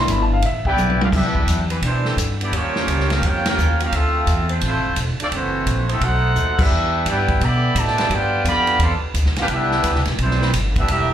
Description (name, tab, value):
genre	jazz, big band swing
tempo	172 BPM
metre	4/4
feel	swing 65% on 8ths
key	C major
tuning	A4 = 440 Hz
part	warm baby grand piano	accompaniment	0.0-0.7 s	B3 to B5	-21 LUFS	left 2 dB	plate reverb, slapback echo
part	upright bass	bass	0.0-11.1 s	D1 to B2	-21 LUFS	equal	none
part	swinging big-band drum kit	drums	0.1-11.0 s	crash cymbal, hi-hat, kick drum, ride cymbal, snare drum, toms	-23 LUFS	equal	none
part	bright trumpet section	melody	0.7-11.1 s	G3 to C6	-21 LUFS	right 1 dB	plate reverb, slapback echo
part	mellow trombone section	second line	0.7-11.1 s	B2 to G4	-27 LUFS	right 2 dB	plate reverb, slapback echo
part	mellow saxophone section	sustained chords	1.7-10.5 s	E3 to C5	-30 LUFS	right 1 dB	plate reverb
room	light reverb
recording	live gig heard through the venue's PA, club reverb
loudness	-16 LUFS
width	side -10 dB against mid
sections	0.0-1.1 A section; 1.1-11.1 B section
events	grand piano solo 0.0-1.1; drum fill 0.8-1.1, 6.4-6.7; band accent 3.4, 6.5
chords	0.0 Cmaj9 (rootless); 1.1 Cmaj9; 2.5 Eb9; 3.9 Dm9; 5.3 F#m7b5; 6.0 B7b9; 6.7 Em7; 8.1 G7; 9.5 Cmaj9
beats	0.09 0.44 0.79 | 1.14 1.48 1.83 2.18 | 2.53 2.88 3.23 3.58 | 3.92 4.27 4.62 4.97 | 5.32 5.67 6.02 6.36 | 6.71 7.06 7.41 7.76 | 8.10 8.45 8.80 9.15 | 9.50 9.84 10.19 10.54 | 10.89